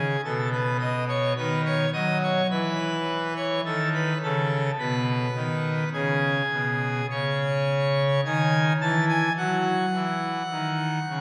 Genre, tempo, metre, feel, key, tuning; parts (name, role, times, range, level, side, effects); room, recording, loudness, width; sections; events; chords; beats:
classical, chorale-style piece for pipe organ; 53 BPM; 4/4; straight; E major; A4 = 440 Hz
pipe organ, full organ; solo; 0.0-11.2 s; B2 to A5; -25 LUFS; equal
wet church reverb, RT60 2.9 s; -25 LUFS; mono
0.0-11.2 A section
0.3 B; 2.5 E; 7.1 C#m; 9.4 F#5
0.25 1.38 | 2.51 3.64 4.78 5.92 | 7.09 8.23 9.37 10.50